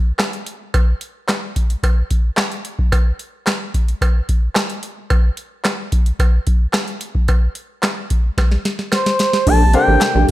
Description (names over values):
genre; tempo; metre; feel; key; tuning
early-eighties boogie funk; 110 BPM; 4/4; straight; Bb major; A4 = 439 Hz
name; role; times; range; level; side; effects
booming analog drum machine; drums; 0.2-10.3 s; crash cymbal, handclaps, hi-hat, kick drum, snare drum; -16 LUFS; equal; none
cowbell; percussion; 0.2-9.0 s; none; -26 LUFS; right 1 dB; none
expressive synth lead; melody; 8.9-10.3 s; C5 to A5; -16 LUFS; equal; chorus, slapback echo
chorused pulse-width pad; sustained chords; 9.5-10.3 s; C3 to G4; -25 LUFS; right 1 dB; none
mellow electric guitar; riff; 9.5-10.3 s; D4 to Bb4; -20 LUFS; right 5 dB; lush chorus
rubbery square bass; bass; 9.5-10.2 s; A1 to Bb1; -14 LUFS; equal; none
clear grand piano; accompaniment; 9.7-10.2 s; Bb3 to C5; -19 LUFS; left 3 dB; none
room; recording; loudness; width
digital ambience; none; -15 LUFS; side -16 dB against mid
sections
0.0-9.5 A section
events
drum fill 8.4-9.5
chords
0.0 N.C.; 9.5 Bbmaj13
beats
0.20 | 0.74 1.29 1.83 2.38 | 2.92 3.47 4.01 4.56 | 5.11 5.65 6.20 6.74 | 7.29 7.83 8.38 8.92 | 9.47 10.01